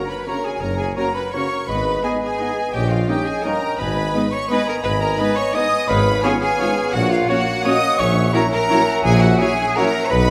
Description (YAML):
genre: classical, orchestral ballroom waltz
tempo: 171 BPM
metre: 3/4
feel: uneven beats, rubato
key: F# major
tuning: A4 = 440 Hz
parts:
  - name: rich chamber violin section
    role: melody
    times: 0.0-10.3 s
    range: E#5 to D#6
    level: -32 LUFS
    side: equal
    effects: none
  - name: bright silver concert flute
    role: second line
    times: 0.0-10.3 s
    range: E#5 to D#6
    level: -28 LUFS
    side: equal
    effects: none
  - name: mellow cor anglais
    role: second line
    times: 0.0-10.3 s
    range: A#4 to G#5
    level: -33 LUFS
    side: equal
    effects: none
  - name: rich chamber violin section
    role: second line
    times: 0.0-10.3 s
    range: E#5 to D#6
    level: -34 LUFS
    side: equal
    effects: none
  - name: warm clarinet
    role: second line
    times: 0.0-10.3 s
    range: C#5 to E5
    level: -30 LUFS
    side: equal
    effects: none
  - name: dark bassoon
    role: accompaniment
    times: 0.0-10.3 s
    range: F#3 to C#4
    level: -30 LUFS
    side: equal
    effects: none
  - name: mellow French horn section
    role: sustained chords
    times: 0.0-9.9 s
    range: B3 to F#4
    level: -32 LUFS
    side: equal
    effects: none
  - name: warm trombone section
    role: sustained chords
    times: 0.0-9.9 s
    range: G2 to B3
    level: -32 LUFS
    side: equal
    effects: none
  - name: clear trumpet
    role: stabs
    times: 0.0-9.9 s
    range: C#5 to D#5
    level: -33 LUFS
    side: equal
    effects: none
  - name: rich studio cello section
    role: bass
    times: 0.0-10.3 s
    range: E#4 to D#5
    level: -26 LUFS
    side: equal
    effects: none
  - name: rich studio viola section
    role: accompaniment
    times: 0.3-9.9 s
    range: B3 to F#4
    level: -31 LUFS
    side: equal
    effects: none
  - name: clear chamber double bass section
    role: bass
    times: 0.6-10.3 s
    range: F#1 to B1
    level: -26 LUFS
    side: equal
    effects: none
  - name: warm tuba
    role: bass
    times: 0.6-10.3 s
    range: F#1 to B1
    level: -27 LUFS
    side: equal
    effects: none
room: wet recital hall reverb, RT60 1.7 s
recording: none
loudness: -19 LUFS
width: mono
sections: 0.0-10.3 A section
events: none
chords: 0.0 F#; 1.7 G#m; 2.7 D#7/A#; 3.8 G#m; 5.9 C#7/G#; 6.9 F#/A#; 8.0 F#7/A#